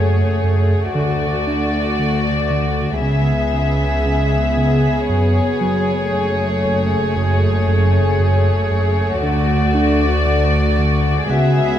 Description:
cinematic, suspense film score; 58 BPM; 4/4; straight; F# minor; A4 = 440 Hz
rich studio violin section; melody; 0.0-11.8 s; C#5 to E5; -23 LUFS; left 3 dB
warm studio violin section; second line; 0.0-11.8 s; F#4 to G#4; -23 LUFS; left 1 dB
warm studio viola section; accompaniment; 0.0-11.8 s; A3 to B3; -24 LUFS; left 1 dB
smooth synth bass; riff; 0.0-11.6 s; F#2 to D4; -19 LUFS; right 1 dB
dark studio double bass section; bass; 0.0-11.8 s; F#1 to D2; -23 LUFS; right 1 dB
warm studio cello section; bass; 0.0-11.8 s; C#2 to F#2; -23 LUFS; right 1 dB
vibraphone with medium hard mallets; texture; 0.0-3.0, 11.3-11.8 s; F#4 to G#5; -27 LUFS; left 3 dB
wet scoring stage reverb, RT60 1.8 s; dark, warm production; -14 LUFS; side -10 dB against mid
0.0-11.8 A section
0.0 F#madd9; 1.0 D; 3.0 C#m7; 5.1 F#madd9; 9.2 D

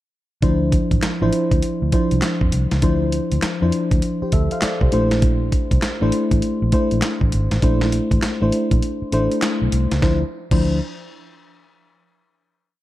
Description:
R&B, new jack swing; 100 BPM; 4/4; swing 63% on 16ths; D minor; A4 = 436 Hz
mellow FM electric piano; accompaniment; 0.4-10.8 s; F3 to F5; -20 LUFS; left 1 dB; chorus
vintage muted fingered electric bass; bass; 0.4-10.8 s; G#1 to F2; -21 LUFS; equal
dusty soul sampler-style drum kit; drums; 0.4-10.6 s; crash cymbal, handclaps, hi-hat, kick drum, snare drum; -20 LUFS; equal
light reverb; dark, warm production; -16 LUFS; side -15 dB against mid
0.4-10.0 verse; 10.0-12.4 final chord
kick muted 8.8-10.0
0.4 Dm9; 4.9 Bbmaj9#11; 10.0 Dm9

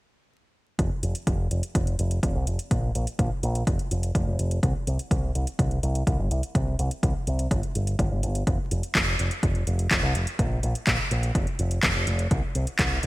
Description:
italo disco; 125 BPM; 4/4; straight; A4 = 441 Hz
picked electric bass with an envelope filter; bass; 0.8-13.1 s; F1 to C2; -26 LUFS; equal
electronic kick drum; drums; 0.8-12.9 s; -27 LUFS; equal; overdrive
house drum kit; drums; 0.8-13.1 s; handclaps, hi-hat; -28 LUFS; equal; overdrive
light reverb; bright 1980s-style digital production, vinyl crackle; -23 LUFS; side -19 dB against mid
0.8-13.1 A section

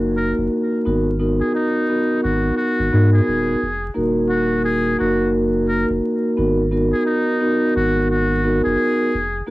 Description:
hip hop, boom-bap hip-hop; 87 BPM; 4/4; swing 59% on 16ths; A4 = 438 Hz
vibraphone with soft mallets; accompaniment; 0.0-9.5 s; Bb3 to Bb4; -18 LUFS; equal; high-pass filter, low-pass filter, cassette tape
saturated sub bass; bass; 0.0-9.4 s; Eb1 to Ab2; -22 LUFS; equal; transformer saturation
trumpet with metal mute; melody; 0.2-9.4 s; Eb4 to Bb4; -24 LUFS; left 1 dB; high-pass filter, low-pass filter, cassette tape
light reverb; home recording on cassette, vinyl crackle; -16 LUFS; side -19 dB against mid
0.0-4.0 A section; 4.0-9.5 B section
0.0 Ebm; 0.9 Abm7; 4.0 Ebm; 6.4 Abm7

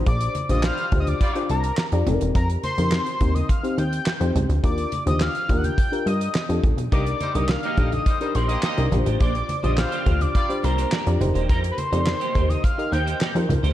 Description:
early-eighties boogie funk; 105 BPM; 4/4; straight; A4 = 440 Hz
mellow FM electric piano; accompaniment; 0.0-13.6 s; C4 to Eb5; -28 LUFS; left 2 dB; chorus
plucky analog bass; bass; 0.0-13.7 s; E1 to G2; -22 LUFS; equal
fat analog lead; melody; 0.1-13.5 s; Bb5 to G6; -28 LUFS; left 2 dB
damped 70s drum kit; drums; 0.1-13.7 s; handclaps, hi-hat, kick drum, snare drum; -24 LUFS; equal
congas; percussion; 0.1-13.6 s; -31 LUFS; right 1 dB
clear horn section; second line; 0.5-1.4, 6.9-10.6 s; G3 to Eb5; -33 LUFS; equal
semi-hollow electric guitar; riff; 6.9-13.7 s; Bb3 to Eb5; -31 LUFS; right 6 dB; ensemble chorus
light reverb, small room ambience; -20 LUFS; side -13 dB against mid
0.0-13.7 A section
0.0 Bb69; 2.1 F9sus4; 4.6 Ebmaj9; 6.9 Cm9; 8.9 Bb69; 11.2 F9sus4

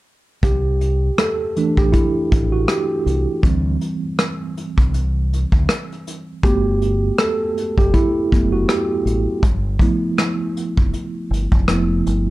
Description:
lo-fi hip hop; 80 BPM; 4/4; swing 59% on 16ths; G major; A4 = 440 Hz
mellow tine electric piano; accompaniment; 0.4-12.3 s; E3 to A4; -20 LUFS; right 2 dB; medium stereo tremolo, cassette tape, low-pass filter
deep dub fingered electric bass; bass; 0.4-12.3 s; F1 to D2; -20 LUFS; equal
vintage brush drum kit; drums; 0.4-12.3 s; hi-hat, kick drum, rim click; -18 LUFS; equal
light reverb; dark, warm production; -16 LUFS; side -17 dB against mid
0.4-12.3 A section
tine electric piano solo 0.4-12.3
0.4 C6; 3.4 D7sus4; 6.4 Gmaj9; 9.4 G13

